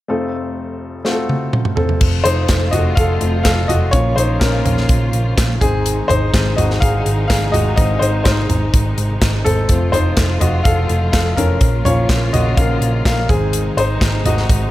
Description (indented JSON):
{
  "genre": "piano-driven pop",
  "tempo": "125 BPM",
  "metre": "4/4",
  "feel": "straight",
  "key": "unclear",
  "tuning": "A4 = 440 Hz",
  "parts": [
    { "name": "clear upright piano", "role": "accompaniment", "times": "0.1-14.7 s", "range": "F1 to F5", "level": "-19 LUFS", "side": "left 2 dB", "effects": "none" },
    { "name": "modern studio drum kit", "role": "drums", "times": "1.0-14.6 s", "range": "crash cymbal, handclaps, hi-hat, kick drum, snare drum, toms", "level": "-17 LUFS", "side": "right 1 dB", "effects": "none" },
    { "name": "warm studio string section", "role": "sustained chords", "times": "2.0-14.7 s", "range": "C3 to F4", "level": "-25 LUFS", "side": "right 2 dB", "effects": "none" },
    { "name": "hollow-body short-scale picked electric bass", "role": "bass", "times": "2.0-14.7 s", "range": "F1 to Bb1", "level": "-18 LUFS", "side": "equal", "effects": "none" }
  ],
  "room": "light reverb, studio reverb",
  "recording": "none",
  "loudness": "-13 LUFS",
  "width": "side -15 dB against mid",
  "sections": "0.1-2.0 A section; 2.0-14.7 B section",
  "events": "drum fill 1.1-2.0; upright piano solo 2.0-14.7",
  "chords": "0.1 F; 3.9 Bbm; 5.6 Ab; 9.7 F; 11.6 Bbm; 13.3 Ab",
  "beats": "| 0.09 0.57 1.05 1.53 | 2.01 2.49 2.97 3.45 | 3.93 4.41 4.89 5.37 | 5.85 6.33 6.81 7.29 | 7.77 8.25 8.73 9.21 | 9.69 10.17 10.65 11.13 | 11.61 12.09 12.57 13.05 | 13.53 14.01 14.49"
}